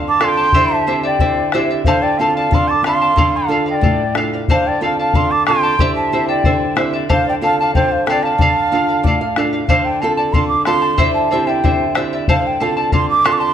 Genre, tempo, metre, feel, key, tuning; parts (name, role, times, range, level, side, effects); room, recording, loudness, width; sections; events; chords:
andean folk, Andean ensemble; 92 BPM; 2/4; straight; A4 = 440 Hz
charango; accompaniment; 0.0-13.5 s; E4 to A5; -20 LUFS; left 1 dB
nylon-string guitar; accompaniment; 0.0-13.5 s; A2 to F5; -20 LUFS; right 2 dB
mellow large quena; melody; 0.1-13.5 s; F5 to D6; -17 LUFS; right 2 dB
bright reedy large quena; second line; 0.1-9.4 s; C5 to A5; -21 LUFS; left 1 dB
bombo; percussion; 0.2-13.4 s; -19 LUFS; left 2 dB
moderate scoring stage reverb, RT60 1.5 s; close, detailed microphones; -13 LUFS; side -9 dB against mid
0.0-9.7 A section; 9.7-13.5 A section
nylon-string guitar fill 8.7-9.7
0.0 F/D; 0.5 C/D; 1.9 F/D; 3.2 Dm; 4.5 F/D; 5.8 C/D; 7.1 F/D; 8.4 Dm; 9.7 F/D; 11.0 C/D; 12.3 F/D